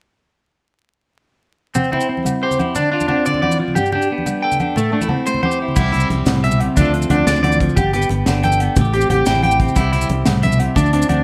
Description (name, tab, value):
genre	highlife guitar band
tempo	120 BPM (dotted quarters)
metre	12/8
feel	straight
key	C major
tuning	A4 = 439 Hz
part	maracas	percussion	1.7-11.1 s	none	-34 LUFS	equal	none
part	clean electric guitar	accompaniment	1.8-11.2 s	G2 to A4	-23 LUFS	equal	none
part	electric guitar at the edge of break-up	arpeggios	1.8-11.2 s	A3 to G5	-21 LUFS	equal	spring reverb, slapback echo
part	agogo bells	percussion	1.8-11.2 s	none	-31 LUFS	equal	none
part	congas	percussion	1.8-11.2 s	none	-26 LUFS	equal	none
part	fingered electric bass	bass	5.8-11.2 s	G1 to D2	-21 LUFS	equal	none
part	tight funk drum kit	drums	5.8-11.2 s	crash cymbal, hi-hat, kick drum, snare drum	-24 LUFS	equal	none
room	light reverb, small room reverb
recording	vinyl crackle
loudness	-17 LUFS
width	mono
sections	1.8-5.8 A section; 5.8-11.2 B section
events	none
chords	1.8 C; 2.8 Dm7; 3.8 Gadd9; 4.8 Am7; 5.8 C; 6.8 Dm7; 7.8 Gadd9; 8.8 Am7; 9.8 C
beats	| 1.75 2.25 2.76 3.26 | 3.76 4.26 4.77 5.27 | 5.77 6.27 6.77 7.27 | 7.77 8.27 8.77 9.27 | 9.77 10.27 10.76